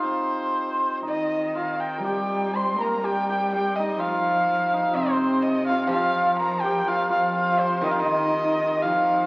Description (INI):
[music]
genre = chinese traditional, Chinese chamber ensemble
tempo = 62 BPM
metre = 2/4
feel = rubato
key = C yu mode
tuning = A4 = 444 Hz
[part]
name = rich erhu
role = melody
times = 0.0-9.3 s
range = C5 to C6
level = -26 LUFS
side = equal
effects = none
[part]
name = hammered dulcimer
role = second line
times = 0.0-9.3 s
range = C4 to C5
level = -30 LUFS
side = equal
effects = none
[part]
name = breathy mellow low xiao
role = second line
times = 1.0-9.3 s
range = C4 to C5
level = -34 LUFS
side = equal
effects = none
[part]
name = rich cello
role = second line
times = 1.0-9.3 s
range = C3 to Bb3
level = -32 LUFS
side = equal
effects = none
[part]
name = steel-string zither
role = accompaniment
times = 5.9-9.3 s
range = Eb3 to F3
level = -37 LUFS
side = equal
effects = none
[sound]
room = wet recital hall reverb, RT60 1.7 s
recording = very old 78 rpm record, vinyl crackle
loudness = -24 LUFS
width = mono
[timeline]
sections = 0.0-2.0 A section; 2.0-9.3 B section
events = none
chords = none